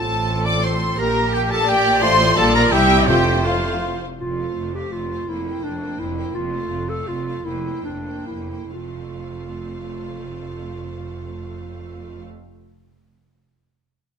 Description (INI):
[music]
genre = classical, dramatic, fast romantic movement for symphony orchestra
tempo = 128-176 BPM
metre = 3/4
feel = rubato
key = F major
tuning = A4 = 440 Hz
[part]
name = rich symphonic violin section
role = melody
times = 0.0-12.2 s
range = F5 to D6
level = -26 LUFS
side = left 2 dB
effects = none
[part]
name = clear oboe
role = second line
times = 0.0-4.0 s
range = F5 to D6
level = -26 LUFS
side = right 1 dB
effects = none
[part]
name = clear symphonic violin section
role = second line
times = 0.0-12.2 s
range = F4 to D5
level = -30 LUFS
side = equal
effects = none
[part]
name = concert flute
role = second line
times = 0.0-4.0 s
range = F5 to D6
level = -26 LUFS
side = left 4 dB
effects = none
[part]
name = mellow clarinet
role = second line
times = 0.0-12.2 s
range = D4 to A4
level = -28 LUFS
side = right 1 dB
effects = none
[part]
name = mellow bassoon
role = accompaniment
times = 0.0-4.0 s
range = G3 to C4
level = -30 LUFS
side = right 2 dB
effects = none
[part]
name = mellow French horn section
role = sustained chords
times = 0.0-3.2 s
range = G3 to G4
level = -26 LUFS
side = left 3 dB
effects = none
[part]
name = dark trumpet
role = stabs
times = 0.0-4.0 s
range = F4 to D5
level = -23 LUFS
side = right 2 dB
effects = none
[part]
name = clear symphonic cello section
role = bass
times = 0.0-12.2 s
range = F2 to C3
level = -28 LUFS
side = equal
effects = none
[part]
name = rich studio double bass section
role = bass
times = 0.0-12.2 s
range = F1 to C2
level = -28 LUFS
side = right 1 dB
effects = none
[part]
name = clear symphonic viola section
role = accompaniment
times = 0.3-12.2 s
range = A3 to E5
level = -28 LUFS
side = left 1 dB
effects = none
[part]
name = timpani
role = percussion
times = 3.1-3.6 s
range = F2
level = -28 LUFS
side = left 1 dB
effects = none
[sound]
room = moderate recital hall reverb, RT60 1.6 s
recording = none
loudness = -17 LUFS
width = side -6 dB against mid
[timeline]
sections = 0.0-4.2 A section; 4.2-8.7 B section; 8.7-11.5 C section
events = slowing down 5.8-8.7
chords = 0.0 F/A; 1.0 Gm/Bb; 2.0 F/A; 2.4 Gm7/Bb; 2.7 C; 3.1 F; 5.3 C7/F; 6.3 F; 7.5 C7/F; 8.7 F